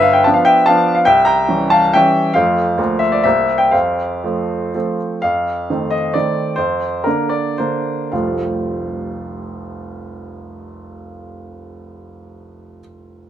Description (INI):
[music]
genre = classical, romantic triple-time dance for piano with dotted rhythms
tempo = 103-154 BPM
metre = 3/4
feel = rubato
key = F major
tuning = A4 = 440 Hz
[part]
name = clear baby grand piano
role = solo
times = 0.0-13.3 s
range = F1 to Bb5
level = -14 LUFS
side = equal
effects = none
[sound]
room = moderate stone room reverb, RT60 1.1 s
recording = minimal, uncompressed stereo recording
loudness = -14 LUFS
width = side -10 dB against mid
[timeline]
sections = 0.0-5.2 A section; 5.2-8.1 B section; 8.1-11.3 C section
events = slowing down 4.5-8.1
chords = 0.0 G7; 1.1 C7b9; 2.4 F; 2.8 Bb/D; 3.2 C7; 3.7 F; 5.2 F7; 6.6 Bb/F; 8.1 F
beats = 0.26 0.67 | 1.07 1.50 1.95 | 2.36 2.79 3.25 | 3.73 4.24 4.75 | 5.23 5.70 6.15 | 6.58 7.06 7.59 | 8.15 8.68 9.23 | 9.75 10.29 10.84